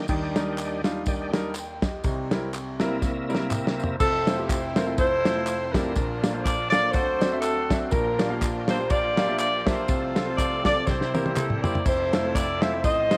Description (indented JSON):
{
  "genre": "uptempo gospel",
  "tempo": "122 BPM",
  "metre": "4/4",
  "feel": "swing 55% on 8ths",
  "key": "Eb major, F major from 4.0 s",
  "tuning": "A4 = 440 Hz",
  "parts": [
    { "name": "bright tonewheel organ", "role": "sustained chords", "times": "0.0-13.2 s", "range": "A2 to C5", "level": "-36 LUFS", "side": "equal", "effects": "slow rotary speaker, overdrive, chorus vibrato" },
    { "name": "warm concert grand piano", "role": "accompaniment", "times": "0.1-13.2 s", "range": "F1 to G5", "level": "-31 LUFS", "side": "equal", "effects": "none" },
    { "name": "warm soul drum kit", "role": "drums", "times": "0.1-13.2 s", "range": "crash cymbal, kick drum, ride cymbal, snare drum, toms", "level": "-29 LUFS", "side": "equal", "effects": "none" },
    { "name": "tambourine and handclaps", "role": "percussion", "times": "0.1-13.2 s", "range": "none", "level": "-42 LUFS", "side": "equal", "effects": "none" },
    { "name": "clear saxophone section", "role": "melody", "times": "4.0-13.2 s", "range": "C4 to E5", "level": "-27 LUFS", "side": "equal", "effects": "none" }
  ],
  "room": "light reverb, small room ambience",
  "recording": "none",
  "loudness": "-25 LUFS",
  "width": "mono",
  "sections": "0.1-4.0 A section; 4.0-13.2 B section",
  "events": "tonewheel organ solo 0.1-4.0; drum fill 3.0-4.0, 10.9-11.9",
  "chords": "0.1 Ebmaj7; 2.0 C7; 4.0 Fmaj7; 6.0 Bbmaj7; 6.9 D7; 7.9 Gm7/Bb; 9.9 F/C; 10.9 C7; 11.9 Fmaj7"
}